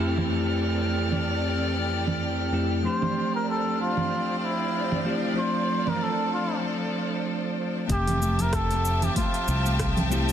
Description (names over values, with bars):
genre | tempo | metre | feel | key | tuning
sunset chillout | 95 BPM | 4/4 | swing 56% on 16ths | F major | A4 = 444 Hz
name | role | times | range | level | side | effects
bell-like tine electric piano | accompaniment | 0.0-10.3 s | F2 to E5 | -28 LUFS | moving between left 3 dB and right 4 dB | auto-pan, tape echo
rich studio string section | sustained chords | 0.0-10.3 s | E3 to A5 | -30 LUFS | left 1 dB | none
drifting glass-harmonics texture | texture | 0.0-6.6 s | F6 | -37 LUFS | equal | chorus, built-in reverb
smooth R&B drum kit | drums | 0.2-10.3 s | cabasa, congas, hi-hat, rim click | -31 LUFS | right 4 dB | low-pass filter on hats, low-pass filter on perc, low-pass filter on snare
trumpet with cup mute | melody | 2.9-10.1 s | E4 to C5 | -29 LUFS | equal | digital delay
mellow fretless electric bass | bass | 7.9-10.3 s | F1 to C2 | -25 LUFS | equal | none
electronic kick drum | drums | 7.9-9.9 s | none | -29 LUFS | equal | overdrive
congas and bongos | percussion | 8.2-10.3 s | none | -33 LUFS | left 4 dB | none
room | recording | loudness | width
moderate plate reverb, RT60 1.4 s | dense, heavily limited modern master | -23 LUFS | side -9 dB against mid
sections
0.0-7.9 A section; 7.9-10.3 B section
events
break 6.6-7.9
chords
0.0 Dm11/F; 5.4 F6; 7.9 Fmaj9